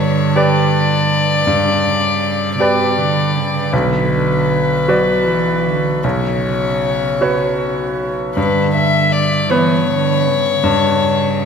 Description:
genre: neoclassical piano and strings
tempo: 53 BPM (dotted quarters)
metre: 6/8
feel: rubato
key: unclear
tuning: A4 = 444 Hz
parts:
  - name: warm violin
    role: melody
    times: 0.0-11.5 s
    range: B4 to E5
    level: -18 LUFS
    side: left 5 dB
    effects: none
  - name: warm cello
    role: second line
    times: 0.0-11.5 s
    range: B2 to F#3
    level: -19 LUFS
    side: right 4 dB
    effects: none
  - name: bright grand piano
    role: accompaniment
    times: 0.0-11.5 s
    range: B1 to D5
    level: -17 LUFS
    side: equal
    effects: none
room: wet scoring stage reverb, RT60 1.7 s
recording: recorded in a church or concert hall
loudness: -13 LUFS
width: side -6 dB against mid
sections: 0.0-8.4 A section; 8.4-11.5 A section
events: none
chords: 0.0 G; 3.7 Bm; 6.0 Bsus2; 8.4 G

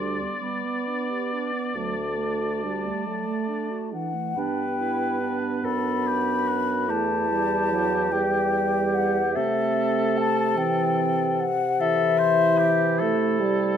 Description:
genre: classical, slow romantic movement for wind quintet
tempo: 44-51 BPM (dotted quarters)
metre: 12/8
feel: rubato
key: G major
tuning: A4 = 440 Hz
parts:
  - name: mellow hollow silver concert flute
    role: melody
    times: 0.0-13.4 s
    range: E5 to C6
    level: -26 LUFS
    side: left 6 dB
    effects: none
  - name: warm oboe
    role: second line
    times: 0.0-13.8 s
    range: F#4 to D5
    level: -30 LUFS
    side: left 2 dB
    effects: none
  - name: mellow French horn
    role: accompaniment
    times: 0.0-13.8 s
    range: E3 to B3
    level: -28 LUFS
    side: right 2 dB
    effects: none
  - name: warm clarinet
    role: accompaniment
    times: 0.0-13.8 s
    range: F#3 to G4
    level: -31 LUFS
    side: right 14 dB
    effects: none
  - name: dark bassoon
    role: bass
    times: 0.0-13.8 s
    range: D2 to C3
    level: -28 LUFS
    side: right 3 dB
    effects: none
room: moderate recital hall reverb, RT60 1.4 s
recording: close, detailed microphones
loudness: -22 LUFS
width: side -8 dB against mid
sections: 0.0-4.4 A section; 4.4-13.8 B section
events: none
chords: 0.0 G/D; 1.8 D; 4.4 G; 6.9 Em; 9.4 Am/C

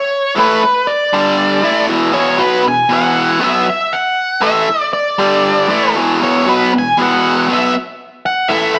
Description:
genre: rock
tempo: 118 BPM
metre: 4/4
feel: straight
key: unclear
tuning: A4 = 441 Hz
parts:
  - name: octave-fuzz lead guitar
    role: melody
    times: 0.0-8.8 s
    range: B4 to B5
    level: -17 LUFS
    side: equal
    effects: distortion
  - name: biting overdriven guitar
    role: riff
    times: 0.4-8.8 s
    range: E2 to B3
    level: -16 LUFS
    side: equal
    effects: none
room: moderate stone room reverb, RT60 1.3 s, digital ambience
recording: cassette tape, small speaker sound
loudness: -14 LUFS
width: mono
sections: 0.0-8.8 A section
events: none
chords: 0.0 E5; 1.1 G5; 1.6 E5; 5.2 G5; 5.7 E5

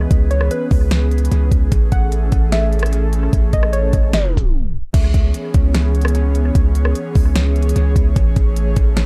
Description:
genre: hip hop, atmospheric cloud-rap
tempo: 149 BPM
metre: 4/4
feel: half-time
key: C# minor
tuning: A4 = 440 Hz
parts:
  - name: airy breathy pad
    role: sustained chords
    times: 0.0-9.1 s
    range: E3 to C#5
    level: -26 LUFS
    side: equal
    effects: chorus, sidechain pumping
  - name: long sustained 808-style bass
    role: bass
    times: 0.0-9.1 s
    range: A1 to C#2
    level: -18 LUFS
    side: equal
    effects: none
  - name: smooth R&B drum kit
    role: drums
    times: 0.1-9.1 s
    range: crash cymbal, hi-hat, kick drum, rim click, snare drum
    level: -20 LUFS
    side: equal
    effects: none
  - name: warbly dusty pluck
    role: melody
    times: 0.3-4.9 s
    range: B4 to F#5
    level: -28 LUFS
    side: equal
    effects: chorus, analog delay
room: little or no reverb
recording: echo-heavy mix, tape stop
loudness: -16 LUFS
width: mono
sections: 0.0-4.9 A section; 4.9-9.1 B section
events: tape stop 4.1-4.9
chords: 0.0 C#m7; 1.7 Amaj7; 4.9 C#m7; 8.2 Amaj7

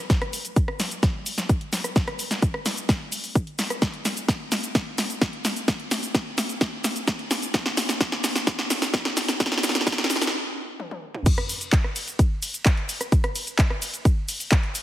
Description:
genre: EDM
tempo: 129 BPM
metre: 4/4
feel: straight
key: none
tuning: none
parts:
  - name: electronic kick drum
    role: drums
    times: 0.1-14.6 s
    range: none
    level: -21 LUFS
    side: equal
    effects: none
  - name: house drum kit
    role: drums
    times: 0.1-14.8 s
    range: cabasa, crash cymbal, handclaps, hi-hat, ride cymbal, rim click, snare drum, toms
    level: -25 LUFS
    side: equal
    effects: none
room: moderate scoring stage reverb, RT60 1.5 s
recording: heavily compressed radio sound, high-pass filter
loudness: -22 LUFS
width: side -13 dB against mid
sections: 0.0-11.3 A section; 11.3-14.8 B section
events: build-up 0.0-11.3; drum fill 0.0-10.3, 10.8-11.3; filter sweep 0.0-11.3; stop 10.3-11.3; drop 11.3-14.8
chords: none

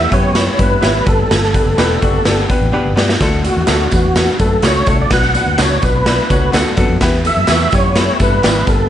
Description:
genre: uptempo 1960s-style soul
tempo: 126 BPM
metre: 4/4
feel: straight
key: unclear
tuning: A4 = 441 Hz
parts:
  - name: tonewheel organ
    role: melody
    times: 0.0-8.9 s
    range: F#4 to F#5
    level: -17 LUFS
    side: right 1 dB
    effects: overdrive, chorus vibrato, slow rotary speaker
  - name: clear baby grand piano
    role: accompaniment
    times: 0.0-8.9 s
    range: G2 to D5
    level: -20 LUFS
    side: left 2 dB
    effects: none
  - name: electric guitar through a small old amp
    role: riff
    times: 0.0-2.9, 6.1-8.6 s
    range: F#3 to G4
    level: -25 LUFS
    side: left 7 dB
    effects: wide subtle chorus
  - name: vintage muted fingered electric bass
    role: bass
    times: 0.0-8.9 s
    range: E1 to G2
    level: -18 LUFS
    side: equal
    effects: none
  - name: raw garage drum kit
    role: drums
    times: 0.1-8.8 s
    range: hi-hat, kick drum, snare drum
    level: -15 LUFS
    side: equal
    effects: none
  - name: electric guitar through a small old amp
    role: stabs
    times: 0.8-8.6 s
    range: B3 to E5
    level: -23 LUFS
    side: right 6 dB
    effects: none
  - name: tambourine and handclaps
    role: percussion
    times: 3.2-8.8 s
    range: none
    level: -27 LUFS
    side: right 2 dB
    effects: none
room: small room ambience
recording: vinyl crackle, nothing above 10.5 kHz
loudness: -11 LUFS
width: side -11 dB against mid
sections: 0.0-8.9 A section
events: drum fill 2.7-3.2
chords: 0.0 Em; 1.1 G; 3.2 D; 5.1 Bm; 7.0 Em

